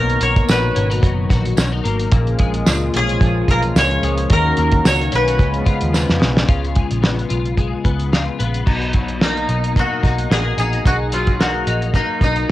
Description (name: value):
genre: indie pop, bedroom pop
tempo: 110 BPM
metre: 4/4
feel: swing 55% on 16ths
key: unclear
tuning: A4 = 437 Hz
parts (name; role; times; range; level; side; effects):
- koto; melody; 0.0-12.5 s; D#4 to D#5; -20 LUFS; equal; lush chorus, cassette tape, tape echo
- twelve-string electric guitar; accompaniment; 0.0-12.5 s; A#2 to F#4; -23 LUFS; left 5 dB; ensemble chorus, warbly pitch drift, cassette tape
- warm analog pad; sustained chords; 0.0-6.5 s; B2 to F#4; -26 LUFS; right 1 dB; chorus, cassette tape
- vintage muted picked electric bass; bass; 0.0-12.5 s; F#1 to E#2; -21 LUFS; equal; none
- cloth-damped thuddy drum kit; drums; 0.1-12.5 s; crash cymbal, hi-hat, kick drum, snare drum; -18 LUFS; right 1 dB; cassette tape
- tambourine; percussion; 0.5-6.1 s; none; -30 LUFS; right 10 dB; none
room: light reverb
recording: home recording on cassette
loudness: -14 LUFS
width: side -15 dB against mid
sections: 0.0-6.5 A section; 6.5-8.7 B section; 8.7-12.5 C section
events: drum fill 5.9-6.5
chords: 0.0 Bmaj7; 2.1 A#m7; 4.3 D#m7; 5.4 C#7; 8.7 Bmaj7